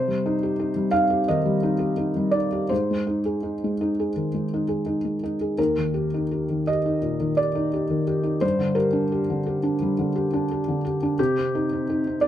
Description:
neoclassical minimalist piano; 86 BPM; 4/4; rubato; A4 = 439 Hz
felt-muted upright piano; solo; 0.0-12.3 s; Eb2 to F5; -21 LUFS; equal
light reverb; dark, warm production; -21 LUFS; side -11 dB against mid
0.0-12.3 A section
0.0 Cm; 2.7 Ab; 5.6 Eb; 8.4 Gm; 11.2 Cm
0.58 1.28 1.99 | 2.71 3.43 4.15 4.86 | 5.58 6.30 7.03 7.73 | 8.43 9.12 9.81 10.49 | 11.18 11.87

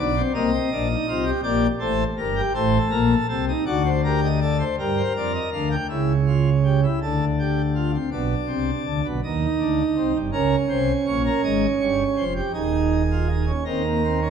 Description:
classical, baroque-style 3-part fugue for pipe organ; 54 BPM (dotted quarters); 6/8; straight; C minor; A4 = 440 Hz
pipe organ, plenum; solo; 0.0-14.3 s; Eb1 to G5; -20 LUFS; right 1 dB
wet recital hall reverb, RT60 1.6 s; dark, warm production; -20 LUFS; side -7 dB against mid
0.0-5.9 A section; 5.9-14.3 B section
0.4 Cm; 1.5 Gm; 2.6 Adim; 3.7 D7; 4.8 Gm; 5.9 C#dim; 7.0 Dm; 8.1 Bm; 9.2 Cm; 10.3 Bbm; 12.5 Ebsus4; 13.7 Eb5
0.36 | 1.46 2.57 | 3.67 4.78 | 5.90 7.01 | 8.12 9.23 | 10.33 11.43 | 12.55 13.67

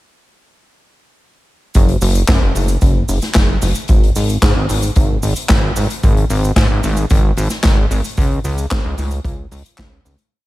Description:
italo disco; 112 BPM; 4/4; straight; A4 = 440 Hz
street-band drum kit; drums; 1.7-10.3 s; cabasa, handclaps, hi-hat, snare drum; -20 LUFS; left 1 dB; gated reverb
chorused synth bass; bass; 1.8-10.2 s; F#1 to G#2; -17 LUFS; equal
kick drum; drums; 1.8-9.9 s; -15 LUFS; equal
little or no reverb; -13 LUFS; side -17 dB against mid
1.7-10.3 chorus
fade-out 7.5-10.3
| 1.75 2.28 2.82 3.35 | 3.89 4.43 4.96 5.50 | 6.03 6.57 7.11 7.64 | 8.18 8.71 9.25 9.78

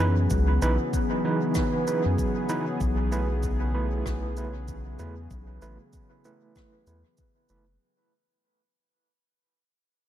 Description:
ambient dub; 96 BPM; 4/4; swing 60% on 16ths; A4 = 440 Hz
warm analog pad; sustained chords; 0.0-7.8 s; C#3 to G#4; -30 LUFS; left 1 dB; chorus, vintage 12-bit sampler grit
handpan; arpeggios; 0.0-1.6 s; C#4; -40 LUFS; equal
overdriven tine electric piano; stabs; 0.0-7.6 s; E3 to B4; -30 LUFS; right 3 dB; medium tremolo, low-pass filter, dub echo
round analog bass; bass; 0.0-7.8 s; F#1 to F#2; -26 LUFS; equal
cabasa and rim click; drums; 0.3-7.6 s; -41 LUFS; equal; dub echo
electronic kick drum; drums; 0.3-7.3 s; -31 LUFS; left 1 dB
light reverb, studio reverb; -24 LUFS; side -11 dB against mid
0.0-7.8 A section
fade-out 0.0-7.8; filter sweep on tine electric piano 0.0-7.8
0.0 C#m9; 2.8 B7sus4
| 0.30 0.93 1.55 2.18 | 2.81 3.43 4.05 4.68 | 5.30 5.93 6.55 7.18

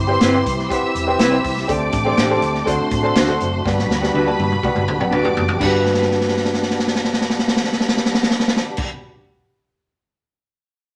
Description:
uptempo 1960s-style soul; 122 BPM; 4/4; straight; G major; A4 = 439 Hz
bright studio string section; second line; 0.0-8.8 s; G4 to E6; -28 LUFS; equal
warm upright piano; accompaniment; 0.0-8.9 s; G2 to A5; -25 LUFS; equal
percussive tonewheel organ; sustained chords; 0.0-8.8 s; G3 to G4; -28 LUFS; equal; overdrive, chorus vibrato, stopped rotary speaker
vintage muted fingered electric bass; bass; 0.0-8.8 s; E1 to A2; -28 LUFS; equal
mellow electric guitar; stabs; 0.2-9.1 s; C4 to C5; -23 LUFS; equal
swinging big-band drum kit; drums; 0.2-8.9 s; crash cymbal, hi-hat, kick drum, snare drum, toms; -22 LUFS; equal
moderate studio reverb, RT60 0.8 s; -18 LUFS; mono
0.0-5.6 A section; 5.6-9.5 B section
drum fill 3.6-5.6, 5.9-8.8
0.0 Cmaj7; 1.7 D7sus4; 2.7 D7; 3.6 Gmaj7
0.22 0.71 1.20 | 1.69 2.18 2.67 3.16 | 3.65 4.14 4.63 5.12 | 5.61 6.10 6.59 7.08 | 7.57 8.06 8.55 9.04

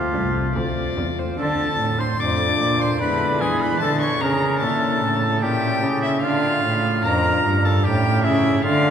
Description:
classical, baroque-style sonata movement with continuo; 74 BPM; 3/4; straight; D minor; A4 = 440 Hz
rich violin; melody; 0.0-8.9 s; A4 to D6; -25 LUFS; left 4 dB
warm oboe; second line; 0.0-8.9 s; E4 to D5; -24 LUFS; right 3 dB
pipe organ, flutes; accompaniment; 0.0-8.9 s; C2 to F4; -24 LUFS; equal
rich cello; bass; 0.0-8.9 s; C2 to E3; -22 LUFS; right 1 dB
wet cathedral reverb, RT60 6.3 s; recorded in a church or concert hall; -18 LUFS; side -8 dB against mid
0.0-1.4 A section; 1.4-8.9 A section
0.0 F; 1.4 Dm; 3.0 E7/D; 3.8 A; 6.2 Dm; 7.9 A7
0.56 | 1.39 2.20 3.00 | 3.81 4.62 5.42 | 6.22 7.04 7.85 | 8.66

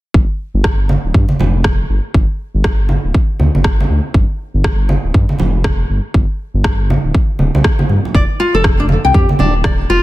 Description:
afro house; 120 BPM; 4/4; swing 60% on 16ths; A4 = 440 Hz
dark detuned saw bass; bass; 0.1-10.0 s; D1 to G2; -15 LUFS; equal; sidechain pumping
electronic kick drum; drums; 0.1-9.8 s; -14 LUFS; equal; small room ambience
electronic rim click; drums; 0.6-9.8 s; -22 LUFS; equal; small room ambience
congas; percussion; 0.9-9.8 s; -18 LUFS; right 2 dB
nylon-string guitar; arpeggios; 8.2-10.0 s; D4 to G5; -14 LUFS; left 2 dB; sidechain pumping, digital delay
little or no reverb; dense, heavily limited modern master; -12 LUFS; side -17 dB against mid
0.1-10.0 A section
0.1 G5; 8.1 F7(no3)
| 0.15 0.65 1.15 1.65 | 2.15 2.65 3.15 3.65 | 4.15 4.65 5.15 5.65 | 6.15 6.65 7.15 7.65 | 8.15 8.65 9.15 9.65

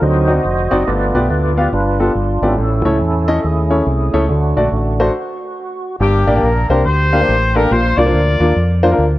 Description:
uptempo gospel; 140 BPM; 4/4; swing 63% on 8ths; A4 = 439 Hz
warm upright piano; accompaniment; 0.0-9.0 s; G2 to F5; -17 LUFS; left 1 dB
tonewheel organ; sustained chords; 0.0-6.0 s; F#3 to Eb5; -19 LUFS; right 1 dB; slow rotary speaker, overdrive, chorus vibrato
fingered electric bass; bass; 0.0-9.2 s; F1 to F2; -16 LUFS; equal
warm horn section; melody; 6.0-8.8 s; Bb3 to D5; -18 LUFS; left 2 dB
light reverb, small room ambience; worn, warbling old tape, cassette tape, warbly pitch drift; -12 LUFS; side -16 dB against mid
0.0-6.0 A section; 6.0-9.2 B section
tonewheel organ solo 0.0-6.0; stop 5.1-6.0
0.0 D7b9; 0.9 G7; 2.6 A; 4.3 D; 6.0 Gm; 7.7 Bb
0.02 0.45 | 0.87 1.30 1.73 2.15 | 2.58 3.01 3.44 3.87 | 4.29 4.72 5.15 5.58 | 6.00 6.43 6.86 7.28 | 7.71 8.14 8.56 8.99

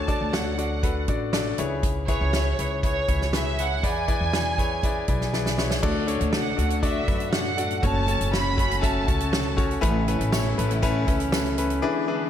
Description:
piano-driven pop; 120 BPM; 4/4; straight; A major; A4 = 440 Hz
warm symphonic violin section; melody; 0.0-9.6 s; C#5 to B5; -29 LUFS; right 3 dB
clear concert grand piano; accompaniment; 0.0-12.3 s; A2 to E5; -27 LUFS; left 3 dB; slapback echo
upright bass; bass; 0.0-11.8 s; F#1 to F#2; -27 LUFS; equal
natural country drum kit; drums; 0.1-11.8 s; crash cymbal, hi-hat, kick drum, snare drum; -27 LUFS; right 1 dB
clear studio string section; sustained chords; 5.8-12.3 s; A2 to F#4; -35 LUFS; equal
tambourine; percussion; 10.3-11.4 s; -41 LUFS; right 8 dB
moderate scoring stage reverb, RT60 1.6 s, studio ambience; big arena sound; -22 LUFS; side -10 dB against mid
0.0-5.8 A section; 5.8-12.3 B section
drum fill 5.3-5.8
0.0 Dmaj7; 1.6 C#m7; 3.8 E7; 5.8 D; 7.8 F#m; 9.8 Aadd9
0.34 0.83 1.33 | 1.83 2.33 2.83 3.33 | 3.83 4.33 4.83 5.33 | 5.83 6.33 6.83 7.33 | 7.83 8.33 8.83 9.33 | 9.83 10.33 10.83 11.33 | 11.83

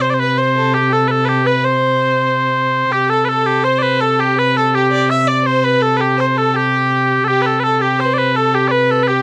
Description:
medieval dance; 165 BPM; 3/4; straight; A4 = 440 Hz
mellow small bagpipes; melody; 0.0-9.2 s; G4 to E5; -17 LUFS; equal
rich fiddle; second line; 0.0-9.2 s; G4 to E5; -22 LUFS; equal
rich viola da gamba; drone; 0.0-9.2 s; C3; -22 LUFS; equal
light reverb; dry, close 1970s-style studio recording; -15 LUFS; mono
0.0-2.9 A section; 2.9-9.2 A section
0.01 0.38 | 0.74 1.10 1.47 | 1.83 2.19 2.56 | 2.92 3.28 3.65 | 4.01 4.37 4.74 | 5.10 5.46 5.82 | 6.18 6.55 6.91 | 7.27 7.63 8.00 | 8.36 8.72 9.08

